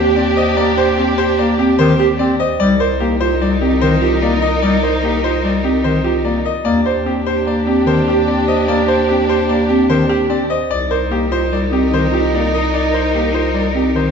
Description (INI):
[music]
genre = classical, minimalist pattern music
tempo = 148 BPM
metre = 5/4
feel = straight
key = Eb major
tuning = A4 = 440 Hz
[part]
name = bright grand piano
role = melody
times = 0.0-14.1 s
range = G4 to Eb5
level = -20 LUFS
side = left 4 dB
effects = none
[part]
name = mellow soprano saxophone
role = second line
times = 0.0-14.1 s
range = D4 to G4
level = -24 LUFS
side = right 4 dB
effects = none
[part]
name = rich symphonic violin section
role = sustained chords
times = 0.0-14.1 s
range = D4 to Bb4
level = -24 LUFS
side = left 3 dB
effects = none
[part]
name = folk marimba with soft mallets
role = arpeggios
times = 0.0-14.0 s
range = C4 to C5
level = -19 LUFS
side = right 4 dB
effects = none
[part]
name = dark bass clarinet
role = bass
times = 0.0-14.1 s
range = C2 to Eb2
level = -20 LUFS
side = left 1 dB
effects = none
[part]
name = mellow bass clarinet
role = accompaniment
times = 0.2-14.1 s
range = Eb3 to C4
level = -20 LUFS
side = left 1 dB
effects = none
[sound]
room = wet recital hall reverb, RT60 1.7 s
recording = heard from further back in the room, nothing above 7.6 kHz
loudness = -13 LUFS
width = side -6 dB against mid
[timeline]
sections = 0.0-14.1 A section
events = none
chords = 0.0 Ebmaj7; 2.6 Cm11; 6.7 Ebmaj7; 10.7 Cm11